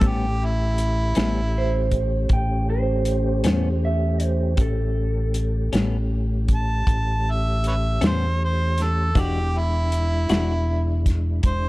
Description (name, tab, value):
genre	slow blues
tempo	53 BPM (dotted quarters)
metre	12/8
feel	straight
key	A mixolydian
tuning	A4 = 440 Hz
part	bright harmonica	melody	0.0-11.7 s	E4 to A5	-27 LUFS	right 1 dB	overdrive
part	clean electric guitar	accompaniment	0.0-10.5 s	A2 to F#4	-27 LUFS	left 3 dB	harmonic tremolo
part	mellow tonewheel organ	sustained chords	0.0-11.7 s	G#3 to G4	-30 LUFS	left 2 dB	chorus vibrato, slow rotary speaker
part	fingered electric bass	bass	0.0-11.7 s	E1 to E2	-22 LUFS	equal	none
part	warm soul drum kit	drums	0.0-11.6 s	hi-hat, kick drum, snare drum	-23 LUFS	equal	none
part	electric guitar through a small old amp	second line	1.6-6.1 s	A4 to G5	-28 LUFS	right 4 dB	none
room	little or no reverb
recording	dark, warm production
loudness	-20 LUFS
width	side -19 dB against mid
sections	0.0-11.7 A section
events	none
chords	0.0 A9; 9.2 E9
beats	| 0.02 1.16 2.31 3.45 | 4.59 5.73 6.87 8.01 | 9.16 10.30 11.44